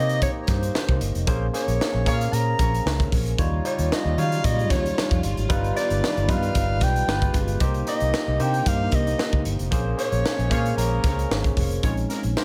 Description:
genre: polished 1980s jazz-funk pop.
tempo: 114 BPM.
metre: 4/4.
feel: swing 54% on 16ths.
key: Bb dorian.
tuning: A4 = 440 Hz.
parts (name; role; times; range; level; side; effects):
mellow soprano saxophone; melody; 0.0-11.5 s; Bb4 to Bb5; -30 LUFS; equal; none.
barky tine electric piano; accompaniment; 0.0-12.4 s; Gb3 to Eb5; -31 LUFS; equal; lush chorus.
vintage muted fingered electric bass; bass; 0.0-12.3 s; F1 to Eb3; -27 LUFS; equal; none.
crisp fusion drum kit; drums; 0.1-12.4 s; hi-hat, kick drum, snare drum; -28 LUFS; equal; none.
mellow horn section; second line; 2.1-2.2, 10.5-12.4 s; Bb3 to Db5; -38 LUFS; equal; digital delay.
warm studio string section; sustained chords; 3.4-11.8 s; Bb2 to F4; -37 LUFS; equal; none.
room: small room ambience.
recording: none.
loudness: -23 LUFS.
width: mono.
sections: 0.0-11.8 A section.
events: band accent 1.3-3.4, 9.7-11.8.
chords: 0.0 Cm7; 1.3 Bbm7; 3.4 Eb9; 5.5 G7b13; 7.1 G7b9; 7.6 Cm7; 9.7 Bbm9; 11.8 Bbm11.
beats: 0.22 0.75 | 1.28 1.80 2.33 2.86 | 3.39 3.92 4.44 4.97 | 5.50 6.03 6.55 7.08 | 7.61 8.14 8.66 9.19 | 9.72 10.25 10.78 11.30 | 11.83 12.36.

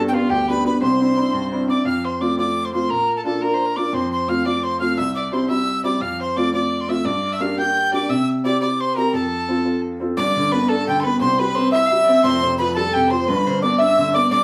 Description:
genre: celtic folk, Celtic jig.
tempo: 115 BPM (dotted quarters).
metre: 6/8.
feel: straight.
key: F major.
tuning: A4 = 440 Hz.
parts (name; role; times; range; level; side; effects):
bright reedy wooden whistle; melody; 0.0-14.4 s; F5 to G6; -25 LUFS; equal; none.
bright fiddle; second line; 0.0-14.4 s; F4 to G5; -29 LUFS; equal; none.
mandolin; second line; 0.0-1.6, 10.2-14.4 s; F4 to E5; -24 LUFS; equal; none.
bright upright piano; accompaniment; 0.0-14.4 s; F1 to A4; -23 LUFS; equal; none.
room: wet studio reverb, RT60 0.6 s.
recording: band playing live in one room.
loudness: -20 LUFS.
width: mono.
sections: 0.0-1.9 A section; 1.9-10.2 B section; 10.2-14.4 C section.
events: none.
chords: 0.0 G; 0.8 Cadd9; 1.9 F; 2.9 Bb; 3.9 F; 5.0 C; 6.0 F; 7.1 Gm; 8.1 C; 9.1 F; 10.2 Gadd9; 11.2 C; 12.2 Fsus2; 13.3 G6.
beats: 0.29 | 0.81 1.33 | 1.85 2.37 | 2.89 3.41 | 3.93 4.45 | 4.97 5.49 | 6.01 6.53 | 7.05 7.57 | 8.09 8.61 | 9.13 9.65 | 10.17 10.69 | 11.21 11.73 | 12.24 12.76 | 13.28 13.80 | 14.32.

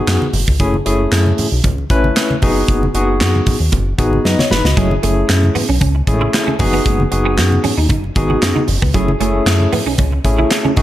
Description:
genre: early-eighties boogie funk.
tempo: 115 BPM.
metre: 4/4.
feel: straight.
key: F# dorian.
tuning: A4 = 440 Hz.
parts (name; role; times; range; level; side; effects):
barky tine electric piano; accompaniment; 0.0-10.8 s; G#3 to B5; -17 LUFS; left 1 dB; overdrive, medium tremolo.
chorused synth bass; bass; 0.1-10.8 s; F#1 to F#2; -16 LUFS; equal; none.
modern studio drum kit; drums; 0.1-10.8 s; handclaps, hi-hat, kick drum, snare drum; -17 LUFS; equal; none.
congas; percussion; 0.2-10.8 s; none; -23 LUFS; equal; none.
semi-hollow electric guitar; riff; 4.8-10.8 s; F#3 to F#4; -22 LUFS; right 4 dB; ensemble chorus.
room: light reverb, small room ambience.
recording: none.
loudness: -12 LUFS.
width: side -13 dB against mid.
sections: 0.0-10.8 A section.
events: tine electric piano fill 4.0-4.8; drum fill 4.2-4.8.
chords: 0.0 G#m7/F#; 0.6 F#m9; 2.4 G#m7/F#; 4.8 F#m9; 6.6 G#m7/F#; 8.9 F#m9.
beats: 0.07 | 0.60 1.12 1.64 2.16 | 2.68 3.21 3.73 4.25 | 4.77 5.29 5.81 6.34 | 6.86 7.38 7.90 8.42 | 8.95 9.47 9.99 10.51.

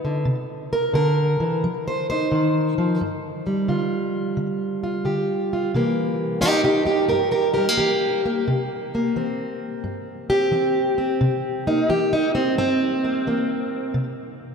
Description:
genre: acoustic country blues, solo or duo.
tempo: 88 BPM.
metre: 4/4.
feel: swing 67% on 8ths.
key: C mixolydian.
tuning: A4 = 441 Hz.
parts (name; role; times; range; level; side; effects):
fingerpicked plugged-in steel-string acoustic guitar; solo; 0.0-14.5 s; G2 to C5; -20 LUFS; equal; slapback echo.
room: wet cathedral reverb, RT60 4.8 s.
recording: in a vast, echoing space.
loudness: -20 LUFS.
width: side -6 dB against mid.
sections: 0.0-5.7 A section; 5.7-14.5 B section.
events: steel-string acoustic guitar solo 5.7-14.5.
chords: 0.2 C7; 1.6 F5; 3.0 G5; 5.7 C7.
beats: | 0.25 0.93 1.62 2.30 | 2.99 3.67 4.36 5.04 | 5.72 6.41 7.09 7.78 | 8.46 9.15 9.83 10.52 | 11.20 11.89 12.57 13.26 | 13.94.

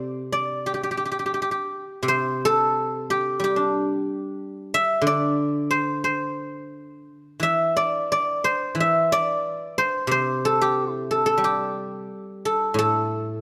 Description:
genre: chinese traditional, Chinese solo plucked strings.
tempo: 85-93 BPM.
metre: 2/4.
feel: rubato.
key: G zhi mode.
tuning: A4 = 440 Hz.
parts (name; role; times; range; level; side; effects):
guzheng; solo; 0.0-13.4 s; A2 to E5; -24 LUFS; equal; none.
room: light reverb.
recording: close, detailed microphones.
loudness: -23 LUFS.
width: mono.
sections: 0.0-2.1 A section; 2.1-12.8 B section.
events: none.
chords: none.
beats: 0.00 | 0.67 1.36 | 2.06 2.75 | 3.42 4.07 | 4.72 5.37 | 6.03 6.73 | 7.42 8.11 | 8.78 9.44 | 10.10 10.76 | 11.41 12.09 | 12.78.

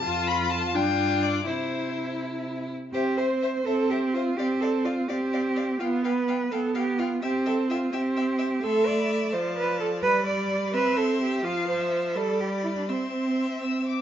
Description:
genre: quick classical-period movement for string quartet.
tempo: 84 BPM (dotted quarters).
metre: 6/8.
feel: straight.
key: C major.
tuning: A4 = 440 Hz.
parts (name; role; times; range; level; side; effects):
rich violin; melody; 0.0-14.0 s; C5 to E6; -33 LUFS; left 8 dB; none.
clear violin; second line; 0.0-14.0 s; E4 to F5; -34 LUFS; left 4 dB; none.
clear viola; accompaniment; 0.0-14.0 s; F3 to F4; -27 LUFS; right 1 dB; none.
rich cello; bass; 0.0-14.0 s; F2 to D5; -28 LUFS; right 2 dB; none.
room: wet stone room reverb, RT60 1.0 s.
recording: nothing above 7.6 kHz.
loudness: -24 LUFS.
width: side -10 dB against mid.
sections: 0.0-2.9 A section; 2.9-14.0 B section.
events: none.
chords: 0.0 F; 0.8 G5; 1.5 C; 5.8 G7/B; 7.2 C; 8.6 Am; 9.3 Dm/F; 10.0 G; 10.7 C; 11.4 F; 12.2 G; 12.9 C.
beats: | 0.04 0.75 | 1.48 2.21 | 2.94 3.66 | 4.37 5.09 | 5.80 6.51 | 7.22 7.92 | 8.62 9.32 | 10.02 10.72 | 11.43 12.15 | 12.88 13.62.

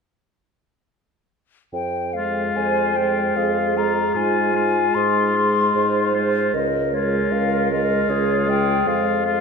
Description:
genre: classical, slow romantic movement for wind quintet.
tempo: 76 BPM.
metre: 3/4.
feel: rubato.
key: F minor.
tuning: A4 = 440 Hz.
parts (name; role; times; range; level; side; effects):
hollow concert flute; melody; 1.7-9.4 s; Db5 to C6; -23 LUFS; left 9 dB; none.
dark bassoon; bass; 1.7-9.4 s; Db2 to Ab2; -24 LUFS; right 4 dB; none.
clear oboe; second line; 2.2-9.4 s; F4; -26 LUFS; left 3 dB; none.
warm French horn; accompaniment; 2.2-9.4 s; Ab3; -25 LUFS; left 1 dB; none.
warm clarinet; accompaniment; 2.6-9.4 s; F4 to C5; -24 LUFS; right 7 dB; none.
room: wet concert hall reverb, RT60 2.1 s.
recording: none.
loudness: -18 LUFS.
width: side -5 dB against mid.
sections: 1.7-9.4 A section.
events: none.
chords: 1.7 Fm; 4.2 Fm/Ab; 6.5 Db; 8.9 Fm.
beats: | 1.73 2.56 3.36 | 4.15 4.95 5.76 | 6.54 7.32 8.10 | 8.87.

